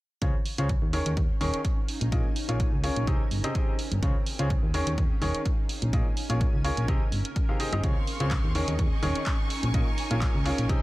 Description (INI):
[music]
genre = piano house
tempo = 126 BPM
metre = 4/4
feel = swing 54% on 16ths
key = unclear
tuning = A4 = 441 Hz
[part]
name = bright baby grand piano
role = riff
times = 0.2-10.8 s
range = Bb2 to F5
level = -32 LUFS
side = equal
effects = sidechain pumping, low-pass filter, dub echo
[part]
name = solid FM bass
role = bass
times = 0.2-10.8 s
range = Eb1 to Eb2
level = -28 LUFS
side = equal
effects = tube saturation, sidechain pumping
[part]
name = electronic kick drum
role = drums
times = 0.2-10.8 s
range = none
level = -27 LUFS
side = equal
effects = none
[part]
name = punchy analog drum machine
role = drums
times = 0.2-10.8 s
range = handclaps, hi-hat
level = -36 LUFS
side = right 2 dB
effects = none
[part]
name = granular cloud pad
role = texture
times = 1.3-10.8 s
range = Eb4 to Ab5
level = -37 LUFS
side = equal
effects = built-in reverb, sidechain pumping
[part]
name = warm studio violin section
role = sustained chords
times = 7.8-10.8 s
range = Ab4 to Db6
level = -37 LUFS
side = equal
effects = sidechain pumping
[sound]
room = digital ambience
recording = none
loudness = -24 LUFS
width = side -18 dB against mid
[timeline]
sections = 0.2-10.8 A section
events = none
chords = 0.2 Dbmaj7; 0.9 Eb7sus4; 1.9 Bbm7; 3.1 Abmaj7; 4.0 Dbmaj7; 4.7 Eb7sus4; 5.7 Bbm7; 6.9 Abmaj7; 7.8 Dbmaj7; 8.6 Eb7sus4; 9.5 Bbm7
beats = | 0.22 0.69 1.17 1.65 | 2.12 2.60 3.07 3.55 | 4.03 4.50 4.98 5.46 | 5.93 6.41 6.88 7.36 | 7.84 8.31 8.79 9.27 | 9.74 10.22 10.69